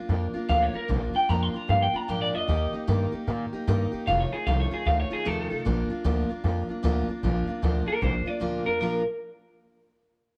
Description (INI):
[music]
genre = rockabilly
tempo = 152 BPM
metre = 4/4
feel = swing 63% on 8ths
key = Bb major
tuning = A4 = 439 Hz
[part]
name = picked steel-string acoustic guitar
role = accompaniment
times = 0.0-9.0 s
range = F2 to G4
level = -32 LUFS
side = equal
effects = plate reverb
[part]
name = upright bass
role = bass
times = 0.1-9.0 s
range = F1 to Bb2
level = -29 LUFS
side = equal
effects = none
[part]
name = electric guitar through a small old amp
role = melody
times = 0.5-9.0 s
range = Ab4 to C6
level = -29 LUFS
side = equal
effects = lush chorus, plate reverb, analog delay
[sound]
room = light reverb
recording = none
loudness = -26 LUFS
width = mono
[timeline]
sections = 0.0-7.2 A section; 7.2-8.8 B section; 8.8-10.4 C section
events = none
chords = 0.0 Bb; 2.5 Eb; 4.1 F7; 5.7 Bb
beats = 0.10 0.50 | 0.90 1.29 1.69 2.09 | 2.48 2.88 3.27 3.67 | 4.07 4.46 4.86 5.25 | 5.65 6.04 6.44 6.83 | 7.23 7.62 8.02 8.41 | 8.81